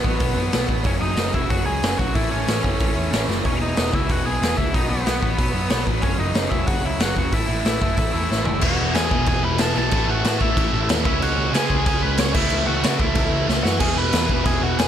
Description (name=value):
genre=punk rock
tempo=186 BPM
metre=4/4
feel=straight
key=E major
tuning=A4 = 439 Hz
part: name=biting lead guitar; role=melody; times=0.0-14.9 s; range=B3 to C#6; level=-26 LUFS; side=left 1 dB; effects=overdrive, ping-pong delay
part: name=crunchy overdriven guitar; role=riff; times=0.0-14.9 s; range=E2 to C#4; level=-25 LUFS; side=equal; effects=none
part: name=overdriven picked electric bass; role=bass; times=0.0-14.9 s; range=E1 to C#3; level=-25 LUFS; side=equal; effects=none
part: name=raw garage drum kit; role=drums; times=0.0-14.9 s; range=crash cymbal, hi-hat, kick drum, snare drum, toms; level=-22 LUFS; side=equal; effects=none
part: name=scooped high-gain guitar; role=riff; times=8.6-14.9 s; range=E2 to C#4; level=-26 LUFS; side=right 2 dB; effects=distortion
room=light reverb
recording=none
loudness=-18 LUFS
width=side -10 dB against mid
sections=0.0-8.6 A section; 8.6-14.9 B section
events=drum fill 3.3, 8.3-8.6, 13.5-13.8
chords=0.0 B5; 0.9 F#5; 2.2 A; 3.5 E; 4.7 B; 6.0 F#5; 7.3 A5; 8.6 E; 9.9 A5; 11.1 C#m; 12.3 A/C#; 13.8 E